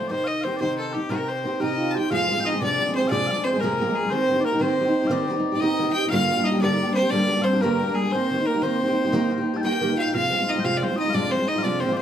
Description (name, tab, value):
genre	celtic folk, Celtic slide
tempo	120 BPM (dotted quarters)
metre	12/8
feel	straight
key	F dorian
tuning	A4 = 439 Hz
part	clear fiddle	melody	0.0-12.0 s	G4 to A5	-25 LUFS	left 1 dB	none
part	mellow small bagpipes	second line	0.0-12.0 s	G4 to A5	-30 LUFS	left 6 dB	none
part	picked steel-string acoustic guitar	accompaniment	0.0-12.0 s	F2 to Ab4	-24 LUFS	equal	none
part	reedy wooden-headed alto flute	second line	1.6-12.0 s	Ab3 to G4	-28 LUFS	right 4 dB	none
room	wet studio ambience, RT60 0.5 s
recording	heard from further back in the room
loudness	-20 LUFS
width	side -9 dB against mid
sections	0.0-2.1 A section; 2.1-12.0 B section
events	none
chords	0.1 Cm; 2.1 Fm; 4.1 Cm/Eb; 6.1 Gm; 8.1 Eb; 10.1 Fm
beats	| 0.10 0.60 1.10 1.60 | 2.11 2.61 3.11 3.61 | 4.11 4.61 5.11 5.62 | 6.12 6.62 7.12 7.62 | 8.12 8.62 9.13 9.63 | 10.13 10.63 11.13 11.63